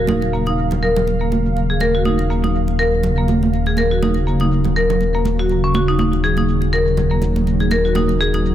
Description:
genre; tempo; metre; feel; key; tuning
afro house; 122 BPM; 4/4; swing 55% on 16ths; Eb minor; A4 = 440 Hz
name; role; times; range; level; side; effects
ethereal airy pad; sustained chords; 0.0-8.5 s; Db3 to F5; -21 LUFS; equal; ensemble chorus, built-in reverb
marimba with medium hard mallets; arpeggios; 0.0-8.4 s; Bb3 to Bb4; -19 LUFS; equal; low-pass filter, tape echo
smooth synth bass; bass; 0.0-8.5 s; Eb1; -20 LUFS; left 1 dB; none
shaker; drums; 0.1-8.5 s; none; -47 LUFS; left 2 dB; none
congas; percussion; 0.1-8.4 s; none; -23 LUFS; right 4 dB; none
room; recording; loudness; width
light reverb, digital ambience; none; -15 LUFS; side -11 dB against mid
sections
0.0-8.5 A section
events
filter sweep on marimba 0.0-8.5; filter sweep on ambient pad 0.0-8.5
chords
0.0 Ebm9

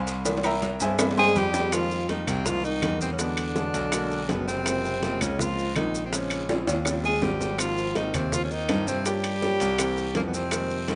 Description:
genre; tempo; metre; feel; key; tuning
Afro-Cuban jazz; 164 BPM; 4/4; straight; F minor; A4 = 439 Hz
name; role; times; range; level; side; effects
bright upright piano; accompaniment; 0.0-11.0 s; C3 to C6; -34 LUFS; equal; none
warm concert grand piano; bass; 0.0-11.0 s; F#1 to G2; -33 LUFS; equal; none
cowbell and bongos; percussion; 0.1-11.0 s; none; -36 LUFS; equal; none
guiro; percussion; 0.1-11.0 s; none; -45 LUFS; equal; none
maracas; percussion; 0.1-11.0 s; none; -37 LUFS; equal; none
congas; percussion; 0.3-11.0 s; none; -39 LUFS; equal; none
timbales and agogo bells; percussion; 0.3-11.0 s; none; -34 LUFS; equal; none
claves; percussion; 0.4-10.7 s; none; -37 LUFS; equal; none
clear tenor saxophone; melody; 1.2-11.0 s; Bb3 to Ab4; -31 LUFS; equal; none
breathy trombone; second line; 1.2-11.0 s; Bb2 to Ab3; -35 LUFS; equal; none
room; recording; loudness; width
light reverb, small room ambience; rough home demo mix, nothing above 10.3 kHz; -26 LUFS; mono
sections
0.0-1.7 A section; 1.7-11.0 B section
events
drum fill 0.3-1.7, 6.5-7.6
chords
0.3 C7b13; 1.7 Fm11; 3.2 E9; 4.7 Gbmaj9#11; 6.1 Bbm9; 6.9 Eb13; 7.6 Ab6; 9.1 Gm7b5; 9.8 C7

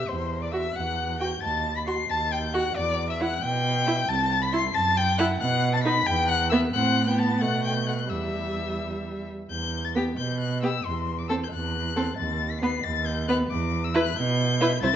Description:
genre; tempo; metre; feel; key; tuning
quick classical-period movement for string quartet; 90 BPM (dotted quarters); 6/8; straight; E minor; A4 = 442 Hz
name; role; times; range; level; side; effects
warm violin; melody; 0.0-15.0 s; C6 to C7; -29 LUFS; left 8 dB; none
dark violin; second line; 0.0-14.9 s; G4 to C6; -29 LUFS; left 2 dB; none
rich cello; bass; 0.1-14.9 s; C2 to B2; -28 LUFS; right 3 dB; none
warm viola; accompaniment; 0.5-15.0 s; G3 to F#4; -28 LUFS; right 2 dB; none
room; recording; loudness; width
moderate recital hall reverb, RT60 1.6 s; nothing above 7.6 kHz; -23 LUFS; side -10 dB against mid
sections
0.0-9.5 A section; 9.5-15.0 B section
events
none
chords
0.1 Emadd9; 1.4 D#dim7; 2.8 Em; 4.1 C; 4.7 F#m7; 5.4 B; 6.1 E5; 6.7 Am; 7.4 Gmaj9/B; 8.1 Em; 10.8 F#7(b5, no3)/E; 12.2 B/D#; 13.5 Em

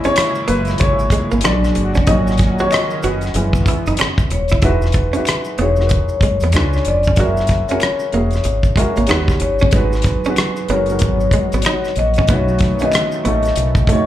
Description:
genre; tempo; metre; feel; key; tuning
R&B, neo-soul; 94 BPM; 4/4; swing 63% on 16ths; G# minor; A4 = 442 Hz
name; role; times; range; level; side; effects
dark baby grand piano; accompaniment; 0.0-14.1 s; A#2 to D#5; -21 LUFS; equal; slapback echo
chorused pulse-width pad; sustained chords; 0.0-4.6, 9.7-14.1 s; A#2 to F#4; -24 LUFS; right 1 dB; none
damped 70s drum kit; drums; 0.0-14.1 s; hi-hat, kick drum, rim click; -17 LUFS; equal; none
maracas and finger snaps; percussion; 0.0-13.9 s; none; -34 LUFS; equal; none
archtop guitar, miked and amplified; second line; 0.1-14.0 s; G#3 to F#4; -23 LUFS; right 4 dB; slapback echo
deep dub fingered electric bass; bass; 0.5-13.8 s; D#1 to E2; -18 LUFS; equal; none
vibraphone with soft mallets; melody; 4.3-14.1 s; B4 to E5; -20 LUFS; left 3 dB; slapback echo
room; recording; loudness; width
light reverb, small room reverb; live gig heard through the venue's PA, club reverb; -13 LUFS; side -13 dB against mid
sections
0.0-4.6 A section; 4.6-14.1 B section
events
grand piano solo 0.0-4.6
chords
0.0 A#m7b5; 1.4 A#7b13; 2.1 D#m7/G#; 3.3 F#7sus4; 4.6 Emaj9; 6.5 C#7b9; 7.2 F#9; 9.1 D#7alt; 9.7 G#m9; 12.3 B7

